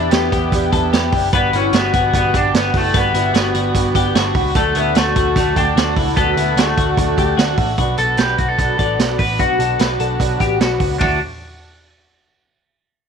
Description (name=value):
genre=jangly indie pop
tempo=149 BPM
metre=4/4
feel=straight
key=D major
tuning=A4 = 440 Hz
part: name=electric guitar through a small old amp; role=melody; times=0.0-11.2 s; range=A3 to B4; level=-20 LUFS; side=left 2 dB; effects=slapback echo
part: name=fingerpicked twelve-string acoustic guitar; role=accompaniment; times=0.0-11.2 s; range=B2 to G4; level=-25 LUFS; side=right 13 dB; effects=none
part: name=overdriven combo organ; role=accompaniment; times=0.0-11.2 s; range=A3 to B5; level=-25 LUFS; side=right 13 dB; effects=none
part: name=twelve-string electric guitar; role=arpeggios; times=0.0-11.2 s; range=E4 to D5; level=-21 LUFS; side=left 14 dB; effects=analog chorus
part: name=vintage muted picked electric bass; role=bass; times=0.0-11.2 s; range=F#1 to E2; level=-22 LUFS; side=left 1 dB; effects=none
part: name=vintage drum kit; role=drums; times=0.1-11.1 s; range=hi-hat, kick drum, ride cymbal, snare drum, toms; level=-19 LUFS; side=right 3 dB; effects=none
room=light reverb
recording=1960s-style stereo with parts hard left and right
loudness=-14 LUFS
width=side -7 dB against mid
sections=0.0-7.8 A section; 7.8-11.0 B section; 11.0-12.6 C section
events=transistor combo organ fill 3.8-4.6, 7.0-7.8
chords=0.0 Em7; 1.3 Gmaj7; 4.6 D; 7.8 Bm; 11.0 Dadd9